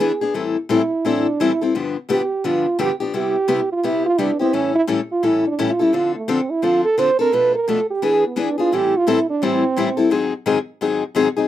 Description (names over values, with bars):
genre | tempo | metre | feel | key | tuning
jazz | 172 BPM | 4/4 | swing 62% on 8ths | A minor | A4 = 440 Hz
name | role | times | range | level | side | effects
warm French horn | melody | 0.0-10.1 s | A3 to C5 | -18 LUFS | right 3 dB | none
picked steel-string acoustic guitar | accompaniment | 0.0-11.5 s | G2 to A4 | -19 LUFS | left 5 dB | none
room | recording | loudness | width
moderate studio ambience, RT60 0.5 s | rough home demo mix | -16 LUFS | side -12 dB against mid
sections
0.3-11.5 A section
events
French horn solo 0.0-11.5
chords
0.3 Am7; 1.7 G7; 3.1 Cmaj7; 4.5 A7; 5.9 Dm7; 7.3 Bm7b5; 8.0 E7; 8.7 Am7; 10.1 G#7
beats
0.00 | 0.35 0.70 1.05 1.40 | 1.75 2.10 2.44 2.79 | 3.14 3.49 3.84 4.19 | 4.54 4.89 5.24 5.58 | 5.93 6.28 6.63 6.98 | 7.33 7.68 8.03 8.38 | 8.72 9.07 9.42 9.77 | 10.12 10.47 10.81 11.16